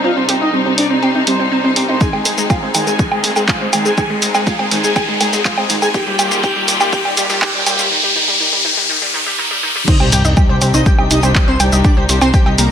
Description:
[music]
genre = melodic techno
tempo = 122 BPM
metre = 4/4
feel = straight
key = C minor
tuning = A4 = 440 Hz
[part]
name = expressive synth lead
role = melody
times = 0.0-12.6 s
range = G3 to Ab4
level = -20 LUFS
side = equal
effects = chorus, sidechain pumping, dub echo
[part]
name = airy dreamy lead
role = second line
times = 0.0-12.6 s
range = G4 to Ab5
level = -23 LUFS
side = equal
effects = chorus, sidechain pumping, ping-pong delay
[part]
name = rich studio string section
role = sustained chords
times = 0.0-12.7 s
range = C3 to G4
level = -22 LUFS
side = left 2 dB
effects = sidechain pumping
[part]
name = analog pluck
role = arpeggios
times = 0.0-12.6 s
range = Eb3 to G5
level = -21 LUFS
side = equal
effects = chorus, sidechain pumping, ping-pong delay
[part]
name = fat analog bass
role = bass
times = 0.0-12.7 s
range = Ab1 to Eb2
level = -21 LUFS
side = equal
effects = tube saturation, sidechain pumping, high-pass filter
[part]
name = riser and sub drop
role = sound effects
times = 0.1-11.8 s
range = none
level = -19 LUFS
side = left 1 dB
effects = none
[part]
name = punchy analog drum machine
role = drums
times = 0.3-12.7 s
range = crash cymbal, handclaps, hi-hat, shaker, woodblock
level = -17 LUFS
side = right 1 dB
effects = none
[part]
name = electronic kick drum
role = drums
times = 2.0-12.4 s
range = none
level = -14 LUFS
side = equal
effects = overdrive
[sound]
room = moderate recital hall reverb, RT60 1.5 s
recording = high-pass filter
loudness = -12 LUFS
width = side -8 dB against mid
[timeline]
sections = 0.0-9.9 A section; 9.9-12.7 B section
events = build-up 0.0-9.9; filter sweep on analog synth lead 0.0-9.9; filter sweep 0.0-9.9; riser 0.1-9.9; drop 9.9-12.7; impact 9.9-11.8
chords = 0.0 Cm; 2.0 Ab; 5.9 Eb; 9.9 Cm

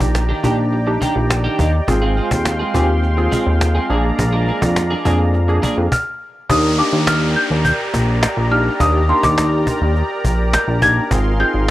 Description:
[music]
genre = dance-pop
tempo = 104 BPM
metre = 4/4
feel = straight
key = Eb major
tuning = A4 = 440 Hz
[part]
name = warm analog keys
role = accompaniment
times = 0.0-11.7 s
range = Bb3 to Bb5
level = -21 LUFS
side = equal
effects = chorus
[part]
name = soft supersaw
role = sustained chords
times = 0.0-11.7 s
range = Ab3 to C6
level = -24 LUFS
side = equal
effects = none
[part]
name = twelve-string electric guitar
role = riff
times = 0.0-5.8 s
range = Eb3 to Ab4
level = -25 LUFS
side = right 3 dB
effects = analog chorus
[part]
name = chorused synth bass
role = bass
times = 0.0-11.7 s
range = Ab1 to F2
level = -17 LUFS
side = equal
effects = none
[part]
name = cajon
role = drums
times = 0.0-11.5 s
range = none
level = -21 LUFS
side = equal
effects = none
[part]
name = marimba with medium hard mallets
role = melody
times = 5.9-11.5 s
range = C6 to Ab6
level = -18 LUFS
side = left 1 dB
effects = analog delay
[part]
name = downlifter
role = sound effects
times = 6.5-11.1 s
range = none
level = -27 LUFS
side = equal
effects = none
[sound]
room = digital ambience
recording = dry, gritty hardware recording, cassette tape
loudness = -14 LUFS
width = side -15 dB against mid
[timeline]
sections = 0.0-6.5 A section; 6.5-11.7 B section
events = synth keys fill 0.7-1.9; stop 5.9-6.5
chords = 0.0 Ebmaj7; 1.9 Ab6; 3.9 Bb7; 6.5 Ebmaj7; 11.1 Ab6

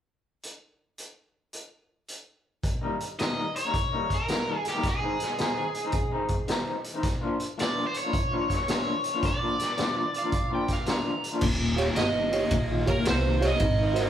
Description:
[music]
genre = electric blues shuffle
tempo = 109 BPM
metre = 4/4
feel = swing 66% on 8ths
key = unclear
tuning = A4 = 439 Hz
[part]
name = raw garage drum kit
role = drums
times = 0.4-14.0 s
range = crash cymbal, hi-hat, kick drum, ride cymbal, snare drum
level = -29 LUFS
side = equal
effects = none
[part]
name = electric guitar through a small old amp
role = riff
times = 2.8-14.1 s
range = Eb2 to F4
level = -30 LUFS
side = left 2 dB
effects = tremolo
[part]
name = raw garage guitar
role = melody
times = 3.2-11.2 s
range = G4 to Eb5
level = -30 LUFS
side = equal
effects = overdrive
[part]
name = overdriven slide guitar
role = second line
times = 10.2-14.1 s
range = Bb4 to Bb5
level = -29 LUFS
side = right 4 dB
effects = none
[part]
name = upright bass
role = bass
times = 11.4-14.1 s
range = Eb1 to C2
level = -28 LUFS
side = equal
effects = none
[part]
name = reed electric piano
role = accompaniment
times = 11.8-14.1 s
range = F4 to Db5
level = -30 LUFS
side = right 3 dB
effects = fast tremolo
[sound]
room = moderate large studio reverb, RT60 0.9 s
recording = band playing live in one room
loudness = -24 LUFS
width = side -10 dB against mid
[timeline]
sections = 0.4-2.6 A section; 2.6-11.4 B section; 11.4-14.1 C section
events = electric slide guitar solo 11.4-14.1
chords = 0.4 N.C.; 2.6 Eb7; 4.8 Ab; 7.0 Bb; 11.4 Eb7

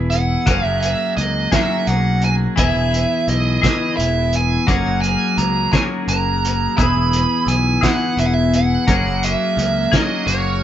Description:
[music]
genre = psychedelic rock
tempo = 57 BPM (dotted quarters)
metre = 6/8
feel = straight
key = F# mixolydian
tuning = A4 = 440 Hz
[part]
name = overdriven combo organ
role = sustained chords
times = 0.0-10.6 s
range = E4 to B4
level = -31 LUFS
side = right 6 dB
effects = none
[part]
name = twelve-string electric guitar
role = riff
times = 0.0-10.6 s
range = E3 to G#4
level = -20 LUFS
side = left 4 dB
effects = phaser
[part]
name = modern bright picked electric bass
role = bass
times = 0.0-10.6 s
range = E1 to C#2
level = -21 LUFS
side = right 1 dB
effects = none
[part]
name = biting lead guitar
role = melody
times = 0.1-10.6 s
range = C#5 to B5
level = -21 LUFS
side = right 4 dB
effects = wah, overdrive
[part]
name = cloth-damped thuddy drum kit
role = drums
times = 0.1-10.4 s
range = hi-hat, kick drum, snare drum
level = -20 LUFS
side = equal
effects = none
[sound]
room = moderate studio ambience, RT60 0.5 s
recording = band playing live in one room, nothing above 7.6 kHz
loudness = -15 LUFS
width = side -11 dB against mid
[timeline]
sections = 0.0-10.6 A section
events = none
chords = 0.5 F#add9; 2.6 E; 4.7 F#add9; 6.8 E; 8.9 F#add9

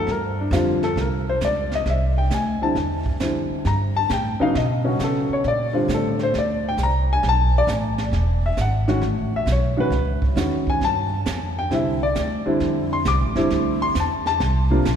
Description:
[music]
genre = jazz piano trio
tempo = 134 BPM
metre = 4/4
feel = swing 68% on 8ths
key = unclear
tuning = A4 = 440 Hz
[part]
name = warm baby grand piano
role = melody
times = 0.0-14.8 s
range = C3 to D6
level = -21 LUFS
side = left 1 dB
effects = none
[part]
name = upright bass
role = bass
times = 0.0-15.0 s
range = E1 to C#3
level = -23 LUFS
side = equal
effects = none
[part]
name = jazz brush drum kit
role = drums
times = 0.1-15.0 s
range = brushed snare drum, hi-hat, kick drum, snare drum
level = -31 LUFS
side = right 3 dB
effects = none
[sound]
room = wet cathedral reverb, RT60 4.6 s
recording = recorded in a church or concert hall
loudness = -19 LUFS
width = side -8 dB against mid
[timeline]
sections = 0.0-1.9 A section; 1.9-15.0 A section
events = grand piano solo 0.0-15.0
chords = 0.1 G5; 1.0 C7sus2; 1.9 Fmaj7; 3.7 Gmadd9; 4.5 Bsus2; 5.4 Bbmaj9; 7.2 Asus2; 8.1 E; 9.0 Amaj13; 10.8 Fadd9; 11.7 Cadd9; 12.6 Fmaj7

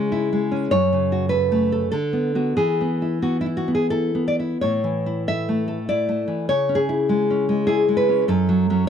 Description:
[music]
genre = romantic piece for solo classical guitar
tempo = 87-101 BPM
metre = 3/4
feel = rubato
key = A major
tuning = A4 = 441 Hz
[part]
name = nylon-string guitar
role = solo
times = 0.0-8.9 s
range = F#2 to E5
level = -18 LUFS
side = equal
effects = none
[sound]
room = small room ambience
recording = dry, close 1970s-style studio recording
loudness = -19 LUFS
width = side -8 dB against mid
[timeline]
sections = 0.0-8.9 A section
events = none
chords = 0.0 C#m; 0.7 F#m; 1.9 Bm7/D; 2.6 E; 4.6 A; 6.5 C#m; 8.3 F#m

